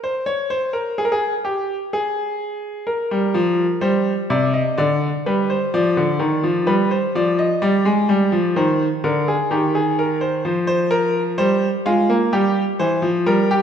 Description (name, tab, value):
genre	classical, baroque-style two-part invention for grand piano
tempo	63 BPM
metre	4/4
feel	straight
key	unclear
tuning	A4 = 440 Hz
part	bright grand piano	solo	0.0-13.6 s	C3 to Eb5	-17 LUFS	equal	none
room	wet scoring stage reverb, RT60 1.7 s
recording	recorded in a church or concert hall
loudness	-17 LUFS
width	side -8 dB against mid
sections	0.0-13.6 A section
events	none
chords	0.0 N.C.; 2.9 Cm; 4.8 Bdim/D; 6.7 G7(no3); 8.6 Cm; 10.5 Fm; 12.3 Edim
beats	0.04 0.98 1.94 | 2.89 3.84 4.79 5.73 | 6.68 7.62 8.57 9.52 | 10.46 11.39 12.33 13.28